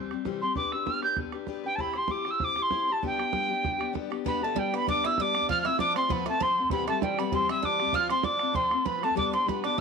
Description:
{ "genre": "celtic folk, Celtic reel", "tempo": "195 BPM", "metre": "4/4", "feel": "swing 54% on 8ths", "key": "G mixolydian", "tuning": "A4 = 440 Hz", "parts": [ { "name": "picked steel-string acoustic guitar", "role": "accompaniment", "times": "0.0-9.8 s", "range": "C3 to C5", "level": "-32 LUFS", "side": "left 12 dB", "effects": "none" }, { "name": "bodhran", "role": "percussion", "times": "0.0-9.8 s", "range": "none", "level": "-35 LUFS", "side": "right 8 dB", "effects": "none" }, { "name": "wooden whistle", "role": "melody", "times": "0.4-9.8 s", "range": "G5 to G6", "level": "-27 LUFS", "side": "equal", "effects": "none" }, { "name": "Irish bouzouki", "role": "second line", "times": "4.3-9.8 s", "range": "G3 to F4", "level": "-33 LUFS", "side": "right 14 dB", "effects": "none" } ], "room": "light reverb, studio reverb", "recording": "1960s-style stereo with parts hard left and right", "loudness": "-25 LUFS", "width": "side -5 dB against mid", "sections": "0.0-4.3 A section; 4.3-9.8 B section", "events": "none", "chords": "0.0 C; 0.6 G/B; 1.8 C; 3.0 G; 5.5 F; 6.7 C; 7.9 F; 9.2 G" }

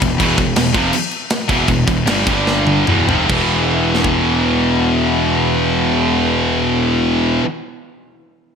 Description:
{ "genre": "heavy metal", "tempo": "140-165 BPM", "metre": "4/4", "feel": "straight", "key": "E minor", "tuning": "A4 = 439 Hz", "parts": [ { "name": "fuzz guitar", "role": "riff", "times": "0.0-7.5 s", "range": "E2 to E4", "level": "-23 LUFS", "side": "equal", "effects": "distortion" }, { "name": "heavy high-gain guitar", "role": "riff", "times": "0.0-7.5 s", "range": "E2 to G3", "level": "-19 LUFS", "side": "left 10 dB", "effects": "distortion" }, { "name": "fuzz picked electric bass", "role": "bass", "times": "0.0-7.4 s", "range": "E1 to G1", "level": "-20 LUFS", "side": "equal", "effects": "overdrive" }, { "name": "tight metal drum kit", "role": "drums", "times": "0.0-4.1 s", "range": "crash cymbal, kick drum, snare drum, toms", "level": "-19 LUFS", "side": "equal", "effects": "gated reverb" }, { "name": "high-gain distorted guitar", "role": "riff", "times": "0.2-7.5 s", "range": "E2 to G3", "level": "-19 LUFS", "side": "right 9 dB", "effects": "distortion" } ], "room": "moderate plate reverb, RT60 2.1 s", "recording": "bright 1980s-style digital production", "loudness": "-13 LUFS", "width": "side -6 dB against mid", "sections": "0.0-3.3 A section; 3.3-6.7 B section", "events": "slowing down 0.2-3.3; drum fill 2.5-3.3", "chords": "0.0 Em; 2.3 G5; 2.9 E5; 3.3 E" }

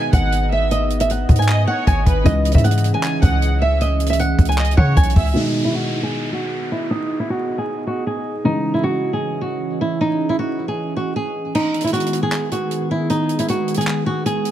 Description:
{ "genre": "hip hop, trap", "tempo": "155 BPM", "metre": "4/4", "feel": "half-time", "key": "G# minor", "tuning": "A4 = 440 Hz", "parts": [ { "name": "flamenco guitar", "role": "melody", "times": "0.0-14.5 s", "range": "D#4 to G#5", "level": "-21 LUFS", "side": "right 2 dB", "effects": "low-pass filter, digital delay" }, { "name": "warm studio violin section", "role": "second line", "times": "0.0-5.3 s", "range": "B4 to G#5", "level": "-27 LUFS", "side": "right 2 dB", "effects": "digital delay" }, { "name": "dark concert grand piano", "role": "accompaniment", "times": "0.0-11.6 s", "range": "B2 to D#4", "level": "-27 LUFS", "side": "left 2 dB", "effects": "low-pass filter" }, { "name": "warbly tape-like pad", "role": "sustained chords", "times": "0.0-14.5 s", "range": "D#3 to D#5", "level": "-26 LUFS", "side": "equal", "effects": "chorus, built-in reverb, low-pass filter" }, { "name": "warm 808-style bass", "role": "bass", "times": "0.1-5.3 s", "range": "G#1 to C#3", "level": "-18 LUFS", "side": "equal", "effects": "none" }, { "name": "compact cocktail drum kit", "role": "drums", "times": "0.1-5.3, 11.5-14.5 s", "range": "crash cymbal, handclaps, hi-hat, kick drum", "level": "-19 LUFS", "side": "equal", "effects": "none" }, { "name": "downlifter", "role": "sound effects", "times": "5.4-8.5 s", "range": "none", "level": "-31 LUFS", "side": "equal", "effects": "none" } ], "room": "little or no reverb", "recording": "vinyl crackle", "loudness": "-16 LUFS", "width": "side -12 dB against mid", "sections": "0.0-5.4 A section; 5.4-11.5 B section; 11.5-14.5 C section", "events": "filter sweep 5.4-11.5; kick muted 11.5-14.5", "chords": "0.0 G#m; 2.3 C#madd9; 5.4 G#m; 8.4 C#madd9; 11.5 G#m" }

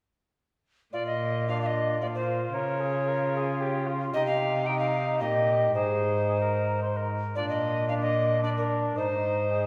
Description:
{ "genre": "classical, renaissance-style consort dance", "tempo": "112 BPM", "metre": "3/4", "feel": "straight", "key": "Bb mixolydian", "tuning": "A4 = 438 Hz", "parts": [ { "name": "alto recorder", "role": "melody", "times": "0.9-9.7 s", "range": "Bb4 to G5", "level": "-31 LUFS", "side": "equal", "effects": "none" }, { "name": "mellow bassoon", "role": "accompaniment", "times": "0.9-9.7 s", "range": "D4 to F4", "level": "-34 LUFS", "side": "equal", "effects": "none" }, { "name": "rich cello", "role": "bass", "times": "0.9-9.7 s", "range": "Ab2 to Db3", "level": "-33 LUFS", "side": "equal", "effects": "none" }, { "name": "dark cor anglais", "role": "second line", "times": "1.5-9.7 s", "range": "D4 to C5", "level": "-35 LUFS", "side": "equal", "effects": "none" } ], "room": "wet recital hall reverb, RT60 1.6 s", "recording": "recorded in a church or concert hall", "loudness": "-27 LUFS", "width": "mono", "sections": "0.9-9.7 A section", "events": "none", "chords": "0.9 Bb; 2.5 Db; 4.1 Cm; 5.7 Ab; 7.4 Bb; 9.0 Ab" }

